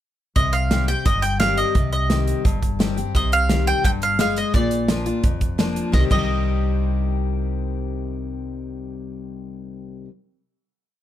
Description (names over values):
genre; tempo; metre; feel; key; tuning
honky-tonk and classic country; 172 BPM; 4/4; straight; C minor; A4 = 439 Hz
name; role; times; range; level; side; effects
mandolin; melody; 0.4-10.1 s; D5 to G5; -23 LUFS; right 2 dB; none
picked steel-string acoustic guitar; accompaniment; 0.4-10.1 s; F2 to G4; -25 LUFS; left 5 dB; none
upright bass; bass; 0.4-10.0 s; F1 to C2; -24 LUFS; right 1 dB; none
natural country drum kit; drums; 0.4-6.2 s; crash cymbal, hi-hat, kick drum, snare drum; -22 LUFS; right 1 dB; none
room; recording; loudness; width
little or no reverb; close, detailed microphones; -18 LUFS; side -12 dB against mid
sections
0.4-5.9 verse; 5.9-8.7 final chord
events
none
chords
0.4 Cm; 4.5 Bb; 5.9 Cm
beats
| 0.36 0.71 1.06 1.41 | 1.75 2.10 2.45 2.80 | 3.15 3.50 3.84 4.19 | 4.54 4.89 5.24 5.59 | 5.93 6.28 6.63 6.98 | 7.33 7.67 8.02 8.37